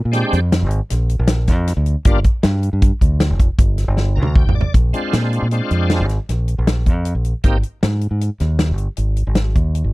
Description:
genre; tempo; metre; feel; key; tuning
progressive instrumental, band music in an uneven meter; 156 BPM; 7/4; straight; Bb mixolydian; A4 = 440 Hz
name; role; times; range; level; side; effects
bright tonewheel organ; accompaniment; 0.1-7.6 s; G3 to Bb5; -21 LUFS; equal; overdrive, chorus vibrato, slow rotary speaker
fingered electric bass; bass; 0.1-9.9 s; F1 to Bb2; -17 LUFS; equal; none
modern studio drum kit; drums; 0.1-9.8 s; hi-hat, kick drum, snare drum, toms; -16 LUFS; equal; none
room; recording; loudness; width
little or no reverb; dry, close 1970s-style studio recording; -15 LUFS; side -21 dB against mid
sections
0.0-4.8 A section; 4.8-9.9 B section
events
drum fill 4.0-4.8; tonewheel organ fill 4.0-4.8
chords
0.0 Bb7; 2.1 Gm7; 4.8 Bb7; 7.4 Abmaj7(no3)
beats
0.14 0.52 0.91 1.29 1.68 | 2.06 2.44 2.83 3.21 3.60 3.98 4.37 | 4.75 5.14 5.52 5.91 6.29 6.67 7.06 | 7.44 7.83 8.21 8.60 8.98 9.37 9.75

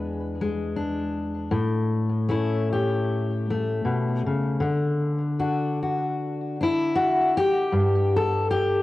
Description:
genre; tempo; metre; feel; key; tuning
folk, solo fingerstyle acoustic guitar; 77 BPM; 4/4; swing 55% on 8ths; G major; A4 = 440 Hz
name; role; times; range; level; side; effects
fingerpicked steel-string acoustic guitar; solo; 0.0-8.8 s; E2 to B4; -22 LUFS; left 1 dB; cassette tape, tape echo
room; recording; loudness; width
light reverb, studio ambience; home recording on cassette; -22 LUFS; side -16 dB against mid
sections
0.0-7.7 A section; 7.7-8.8 B section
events
none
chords
0.0 E7; 1.5 A; 4.6 D; 7.7 G5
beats
0.74 | 1.51 2.29 3.07 3.84 | 4.62 5.39 6.17 6.94 | 7.72 8.49

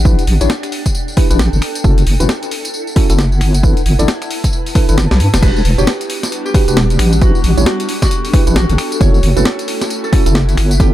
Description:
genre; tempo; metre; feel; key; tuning
UK garage, two-step garage; 134 BPM; 4/4; swing 60% on 16ths; unclear; A4 = 445 Hz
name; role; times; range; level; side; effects
mellow tine electric piano; stabs; 0.0-10.9 s; B3 to D5; -20 LUFS; right 1 dB; medium stereo tremolo, tape echo
deep soft wobble bass; bass; 0.0-10.9 s; E1 to G2; -12 LUFS; equal; chorus
granular cloud pad; texture; 0.0-10.9 s; G3 to A5; -25 LUFS; left 1 dB; built-in reverb, sidechain pumping
breakbeat sampler-style drum kit; drums; 0.1-10.9 s; crash cymbal, finger snaps, hi-hat, snare drum, tambourine; -20 LUFS; equal; none
electronic kick drum; drums; 0.1-10.9 s; none; -13 LUFS; equal; overdrive
Celtic harp; melody; 5.4-10.9 s; F#4 to C#5; -23 LUFS; equal; tape echo
airy breathy pad; sustained chords; 5.8-10.9 s; A3 to A4; -27 LUFS; right 1 dB; chorus, sidechain pumping
room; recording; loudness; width
little or no reverb; none; -11 LUFS; side -14 dB against mid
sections
0.0-5.4 A section; 5.4-10.9 B section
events
drum fill 5.1-5.4; drop 5.4-10.9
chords
0.0 A7sus4; 1.8 F#m7; 3.4 G69; 5.4 Em9; 7.0 A7sus4; 9.0 F#m7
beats
| 0.05 0.50 0.95 1.40 | 1.84 2.29 2.74 3.19 | 3.63 4.08 4.53 4.98 | 5.42 5.87 6.32 6.77 | 7.22 7.66 8.11 8.56 | 9.01 9.46 9.90 10.35 | 10.80

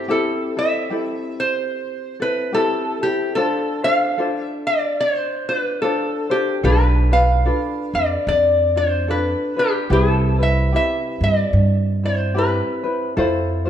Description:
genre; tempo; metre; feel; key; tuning
Hawaiian; 73 BPM; 4/4; swing 59% on 8ths; C major; A4 = 440 Hz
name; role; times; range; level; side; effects
lap resonator guitar; melody; 0.0-13.0 s; G4 to F5; -20 LUFS; left 1 dB; none
tenor ukulele; accompaniment; 0.0-13.7 s; C4 to C5; -23 LUFS; left 1 dB; none
upright bass; bass; 6.6-13.7 s; B1 to G2; -18 LUFS; right 1 dB; none
room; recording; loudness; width
moderate recital hall reverb, RT60 1.7 s; dark, warm production; -17 LUFS; side -10 dB against mid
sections
0.1-13.2 A section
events
none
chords
0.1 C6; 3.4 F6; 6.6 Bm7b5; 9.9 Cmaj7; 13.2 Fmaj7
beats
| 0.09 0.91 1.72 2.54 | 3.36 4.18 4.99 5.81 | 6.63 7.45 8.27 9.08 | 9.90 10.72 11.54 12.36 | 13.17

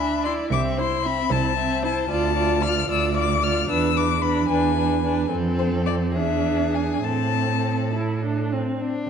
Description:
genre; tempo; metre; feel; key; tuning
quick classical-period movement for string quartet; 66-76 BPM (dotted quarters); 6/8; rubato; A minor; A4 = 440 Hz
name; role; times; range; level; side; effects
rich violin; melody; 0.0-7.9 s; C5 to F6; -25 LUFS; left 10 dB; none
warm violin; second line; 0.0-9.1 s; D4 to E5; -29 LUFS; left 3 dB; none
warm viola; accompaniment; 0.0-8.8 s; C4 to F4; -25 LUFS; right 3 dB; none
clear cello; bass; 0.0-9.1 s; C2 to A2; -25 LUFS; right 4 dB; none
room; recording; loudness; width
moderate concert hall reverb, RT60 2.1 s; dark, warm production; -20 LUFS; side -7 dB against mid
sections
0.0-8.8 A section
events
none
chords
0.0 E7(no3)/D; 0.5 Am/C; 2.1 Dm; 3.7 E7; 5.3 F; 6.2 E7; 7.0 Am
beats
| 0.51 1.31 | 2.10 2.90 | 3.69 4.50 | 5.31 6.16 | 7.04 7.94 | 8.81

